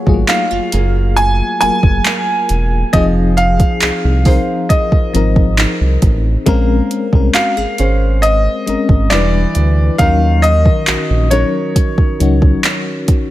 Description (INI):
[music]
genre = contemporary R&B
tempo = 68 BPM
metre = 4/4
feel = straight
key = Bb minor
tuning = A4 = 441 Hz
[part]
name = FM electric piano with tremolo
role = accompaniment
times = 0.0-13.3 s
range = F3 to B4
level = -19 LUFS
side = left 5 dB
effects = none
[part]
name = nylon-string guitar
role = arpeggios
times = 0.0-13.3 s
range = Eb3 to C5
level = -22 LUFS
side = right 4 dB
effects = none
[part]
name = round analog bass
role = bass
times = 0.1-12.5 s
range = E1 to Eb2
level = -14 LUFS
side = equal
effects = none
[part]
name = smooth R&B drum kit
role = drums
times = 0.1-13.3 s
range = handclaps, hi-hat, kick drum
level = -14 LUFS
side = equal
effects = overdrive
[part]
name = clear baby grand piano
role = melody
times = 0.3-12.6 s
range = Db5 to Ab5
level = -17 LUFS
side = equal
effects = tape echo
[sound]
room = digital ambience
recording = none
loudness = -11 LUFS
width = side -15 dB against mid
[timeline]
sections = 0.0-13.3 A section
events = none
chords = 0.0 Gbmaj9; 2.9 Fm7; 6.5 Bbm9; 9.1 Em7; 10.0 Ebm7